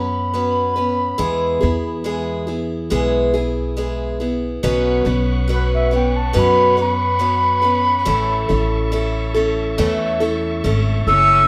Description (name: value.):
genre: acoustic folk duo or small band.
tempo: 70 BPM.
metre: 4/4.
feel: straight.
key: E major.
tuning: A4 = 441 Hz.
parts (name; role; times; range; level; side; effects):
baroque flute; melody; 0.0-11.5 s; B4 to E6; -21 LUFS; equal; none.
picked acoustic archtop guitar; accompaniment; 0.0-11.5 s; A2 to B4; -22 LUFS; equal; none.
upright bass; bass; 0.0-11.5 s; F#1 to F#2; -24 LUFS; equal; none.
bright tonewheel organ; sustained chords; 4.6-11.5 s; A4 to C#6; -32 LUFS; equal; slow rotary speaker.
bright cello; second line; 11.1-11.5 s; C#4; -24 LUFS; equal; none.
room: moderate large studio reverb, RT60 0.9 s.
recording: none.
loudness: -18 LUFS.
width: mono.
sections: 0.0-11.5 A section.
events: flute solo 0.0-11.5.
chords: 0.0 Bsus2; 1.2 E; 4.6 Bsus2; 8.1 A.